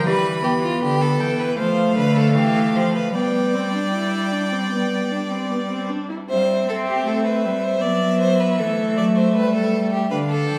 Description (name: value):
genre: classical, baroque-style fugue for string quartet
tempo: 78 BPM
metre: 4/4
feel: straight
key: C major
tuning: A4 = 438 Hz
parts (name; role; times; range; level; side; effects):
- clear violin; melody; 0.0-10.6 s; E5 to B5; -29 LUFS; equal; none
- bright violin; second line; 0.0-10.6 s; F4 to D5; -26 LUFS; equal; none
- rich viola; accompaniment; 0.0-10.6 s; G3 to E4; -25 LUFS; equal; none
- clear cello; bass; 0.0-10.6 s; D3 to C4; -26 LUFS; equal; none
room: wet recital hall reverb, RT60 1.5 s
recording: heard from further back in the room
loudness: -20 LUFS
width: mono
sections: 0.0-6.3 A section; 6.3-10.6 B section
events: none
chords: 0.1 Em; 1.6 F; 3.1 G; 6.3 C/G; 7.8 D7/F#; 9.4 G7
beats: | 0.06 0.82 1.58 2.36 | 3.15 3.94 4.73 5.51 | 6.29 7.06 7.82 8.59 | 9.35 10.11